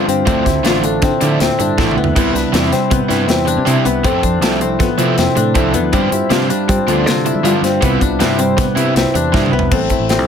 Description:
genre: math rock and midwest emo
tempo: 159 BPM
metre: 5/4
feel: straight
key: C major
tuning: A4 = 441 Hz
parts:
  - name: mellow electric guitar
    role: accompaniment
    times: 0.0-10.3 s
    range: G2 to C5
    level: -20 LUFS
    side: right 6 dB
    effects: none
  - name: qanun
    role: arpeggios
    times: 0.0-10.3 s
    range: B3 to F4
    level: -17 LUFS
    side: left 6 dB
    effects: analog delay
  - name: overdriven electric guitar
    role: riff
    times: 0.0-9.6 s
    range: C3 to E4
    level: -20 LUFS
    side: right 2 dB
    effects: none
  - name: fingered electric bass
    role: bass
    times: 0.1-10.3 s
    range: A1 to G3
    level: -20 LUFS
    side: equal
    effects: none
  - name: modern studio drum kit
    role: drums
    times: 0.1-10.2 s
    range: crash cymbal, hi-hat, kick drum, snare drum, toms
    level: -19 LUFS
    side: equal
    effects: none
room: light reverb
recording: none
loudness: -12 LUFS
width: side -7 dB against mid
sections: 0.0-9.7 A section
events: drum fill 1.8-2.2, 9.3-9.7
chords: 0.3 Dm9; 2.2 Cmaj7; 4.0 Fmaj7; 5.9 G7sus4; 7.8 Cmaj7; 9.7 Am7

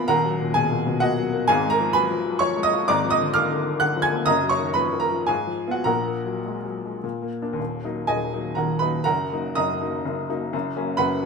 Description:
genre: classical, romantic character piece for solo piano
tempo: 101-132 BPM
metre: 3/4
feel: rubato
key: Eb minor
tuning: A4 = 441 Hz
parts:
  - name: clear upright piano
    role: solo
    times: 0.0-11.3 s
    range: Eb1 to Ab6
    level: -21 LUFS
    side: equal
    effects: none
room: moderate studio reverb, RT60 0.9 s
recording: none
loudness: -21 LUFS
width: side -4 dB against mid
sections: 0.0-7.6 A section; 7.6-11.3 B section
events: none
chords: 0.1 Ebm; 1.5 Fdim/Ab; 2.9 Bb7/Ab; 4.3 Ebm/Gb; 5.3 Fdim/Ab; 5.9 Gbadd9/Bb; 7.0 Bb; 7.6 Ebm; 9.1 Ebm/Gb; 10.5 Gb

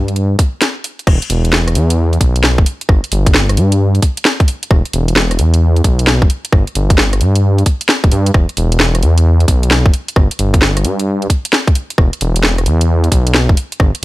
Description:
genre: UK garage, two-step garage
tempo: 132 BPM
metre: 4/4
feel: swing 66% on 16ths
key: unclear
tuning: A4 = 441 Hz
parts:
  - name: dark detuned saw bass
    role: bass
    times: 0.0-13.9 s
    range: D1 to G2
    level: -12 LUFS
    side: equal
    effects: none
  - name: garage drum kit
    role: drums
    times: 0.1-14.0 s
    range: crash cymbal, hi-hat, rim click, snare drum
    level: -15 LUFS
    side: equal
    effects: overdrive, studio reverb
  - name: electronic kick drum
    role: drums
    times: 0.4-13.9 s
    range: none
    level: -11 LUFS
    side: equal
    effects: overdrive, studio reverb
room: little or no reverb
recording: none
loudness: -10 LUFS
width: side -18 dB against mid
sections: 0.0-1.1 A section; 1.1-14.0 B section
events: break 0.6-1.1; drop 1.1-14.0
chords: none

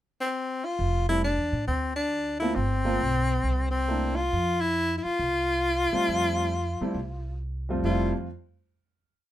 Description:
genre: jazz, small-group swing and bop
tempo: 136 BPM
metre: 4/4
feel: swing 66% on 8ths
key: F major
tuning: A4 = 440 Hz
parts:
  - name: breathy tenor saxophone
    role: melody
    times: 0.2-8.1 s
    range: C4 to F4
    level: -26 LUFS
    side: left 1 dB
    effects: none
  - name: upright bass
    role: bass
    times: 0.8-8.1 s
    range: F1 to A2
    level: -29 LUFS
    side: right 1 dB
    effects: none
  - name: warm concert grand piano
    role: accompaniment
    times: 1.1-8.3 s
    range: F2 to E5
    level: -29 LUFS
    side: right 1 dB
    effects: none
room: light reverb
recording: minimal, uncompressed stereo recording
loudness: -24 LUFS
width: side -13 dB against mid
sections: 0.0-0.8 pickup bar; 0.8-7.8 A section; 7.8-9.3 final chord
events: none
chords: 0.0 N.C.; 0.8 Fmaj9; 1.7 Dm7; 2.6 Gm11; 3.4 C13; 4.3 Fmaj9

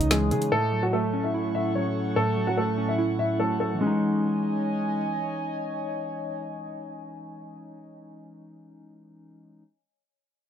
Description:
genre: hip hop, drill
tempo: 146 BPM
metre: 4/4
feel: half-time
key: C# minor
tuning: A4 = 440 Hz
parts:
  - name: warm baby grand piano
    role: melody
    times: 0.0-5.0 s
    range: F#3 to E5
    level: -26 LUFS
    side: equal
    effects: low-pass filter
  - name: warbly lo-fi synth keys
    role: accompaniment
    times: 0.0-9.6 s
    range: A2 to E4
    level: -29 LUFS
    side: right 1 dB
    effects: chorus, low-pass filter
  - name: warbly tape-like pad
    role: sustained chords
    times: 0.0-7.9 s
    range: A4 to D#6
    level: -35 LUFS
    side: equal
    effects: chorus, built-in reverb, phaser
  - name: hard-hitting 808-style bass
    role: bass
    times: 0.0-0.5 s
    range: C#2 to C#3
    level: -27 LUFS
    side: left 1 dB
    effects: none
  - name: drill drum kit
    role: drums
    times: 0.0-0.5 s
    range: hi-hat, snare drum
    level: -25 LUFS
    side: equal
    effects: none
  - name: downlifter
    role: sound effects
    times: 0.0-0.5 s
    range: none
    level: barely audible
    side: none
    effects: none
room: light reverb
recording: none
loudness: -24 LUFS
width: side -9 dB against mid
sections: 0.0-3.8 A section; 3.8-7.1 B section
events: none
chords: 0.0 C#madd9; 0.5 A6; 3.8 C#madd9

